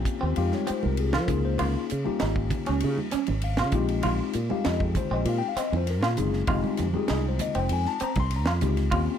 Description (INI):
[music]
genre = electric jazz fusion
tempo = 98 BPM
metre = 4/4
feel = straight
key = F minor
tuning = A4 = 440 Hz
[part]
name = tine electric piano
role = accompaniment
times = 0.0-9.2 s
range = Ab3 to C6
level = -29 LUFS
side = left 10 dB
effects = phaser
[part]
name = fretless electric bass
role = bass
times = 0.0-9.1 s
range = F1 to F3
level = -27 LUFS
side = right 1 dB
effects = analog chorus
[part]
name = tight funk drum kit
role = drums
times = 0.1-9.1 s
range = hi-hat, kick drum, ride cymbal, snare drum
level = -32 LUFS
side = right 1 dB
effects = none
[part]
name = clean electric guitar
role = stabs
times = 0.2-9.1 s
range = C4 to F4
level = -32 LUFS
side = right 4 dB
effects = lush chorus
[part]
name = congas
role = percussion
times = 0.5-9.1 s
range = none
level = -35 LUFS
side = right 8 dB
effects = none
[sound]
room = light reverb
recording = none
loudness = -24 LUFS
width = side -8 dB against mid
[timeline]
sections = 0.0-9.2 A section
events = tine electric piano fill 3.1-4.0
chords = 0.4 Fm9; 1.3 Db69; 3.7 Bb13sus4; 6.5 Fm9